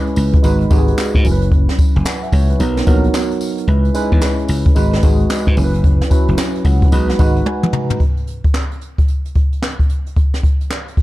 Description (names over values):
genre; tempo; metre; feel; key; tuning
R&B, new jack swing; 111 BPM; 4/4; swing 64% on 16ths; unclear; A4 = 440 Hz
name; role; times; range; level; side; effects
tine electric piano; accompaniment; 0.0-8.0 s; F#3 to A#5; -19 LUFS; right 1 dB; lush chorus
jazz brush drum kit; drums; 0.1-11.0 s; handclaps, hi-hat, kick drum, snare drum, tambourine, toms; -14 LUFS; equal; none
slap bass; bass; 0.2-7.4 s; F#1 to G#2; -17 LUFS; equal; none
room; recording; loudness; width
little or no reverb; dark, warm production; -13 LUFS; side -17 dB against mid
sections
0.0-8.0 A section; 8.0-11.0 B section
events
tine electric piano fill 6.4-8.0; drum fill 7.5-8.0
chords
0.4 G#m7; 1.2 F#7sus4; 2.6 Bmaj7; 3.7 C#m7; 4.8 G#m7; 5.6 F#7sus4; 6.9 B6; 8.0 N.C.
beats
0.43 0.97 | 1.51 2.06 2.60 3.14 | 3.68 4.22 4.76 5.30 | 5.84 6.38 6.92 7.46 | 8.00 8.54 9.08 9.62 | 10.16 10.70